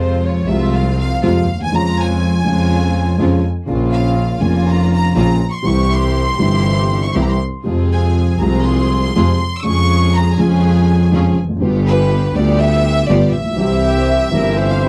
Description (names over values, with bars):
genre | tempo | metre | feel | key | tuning
tango | 122 BPM | 4/4 | rubato | F harmonic minor | A4 = 439 Hz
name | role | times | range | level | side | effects
clear studio violin section | second line | 0.0-14.9 s | B4 to E6 | -23 LUFS | equal | none
dark concert grand piano | accompaniment | 0.0-14.9 s | F1 to G4 | -19 LUFS | equal | none
rich symphonic string section | stabs | 0.0-14.9 s | Ab3 to Ab4 | -26 LUFS | equal | none
rich double bass | bass | 0.0-14.9 s | F1 to F2 | -19 LUFS | equal | none
silver concert flute | second line | 13.8-14.9 s | G4 to C5 | -25 LUFS | equal | none
bandoneon | melody | 14.8-14.9 s | C4 to E4 | -24 LUFS | equal | none
room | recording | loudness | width
light reverb | dry, close 1970s-style studio recording | -15 LUFS | mono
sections
0.0-14.9 A section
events
violin section solo 0.0-14.9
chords
0.0 Fm; 1.7 Db/F; 3.7 Bbm; 5.7 C; 7.7 Fm; 9.7 Db/F; 11.6 G7; 13.6 C